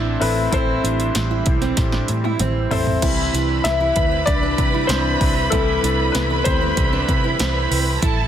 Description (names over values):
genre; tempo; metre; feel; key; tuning
piano-driven pop; 96 BPM; 4/4; straight; unclear; A4 = 441 Hz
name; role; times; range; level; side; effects
clear concert grand piano; accompaniment; 0.0-8.0 s; E3 to E5; -22 LUFS; left 5 dB; none
lush unison pad; sustained chords; 0.0-8.3 s; E3 to E4; -29 LUFS; equal; chorus
fingerpicked steel-string acoustic guitar; riff; 0.0-8.3 s; C4 to E4; -26 LUFS; right 10 dB; none
vintage muted picked electric bass; bass; 0.0-8.3 s; A1 to C3; -23 LUFS; equal; none
deep house drum kit; drums; 0.2-8.2 s; crash cymbal, hi-hat, kick drum, snare drum, toms; -22 LUFS; equal; overdrive
warm studio violin section; second line; 3.0-8.3 s; A4 to B5; -24 LUFS; right 2 dB; none
room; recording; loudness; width
light reverb; dense, heavily limited modern master; -16 LUFS; side -10 dB against mid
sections
0.0-3.0 A section; 3.0-8.3 B section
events
drum fill 1.8-3.0; grand piano solo 3.0-8.3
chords
0.0 Am; 3.0 C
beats
| 0.53 1.15 1.77 2.40 | 3.02 3.65 4.28 4.90 | 5.52 6.15 6.77 7.40 | 8.02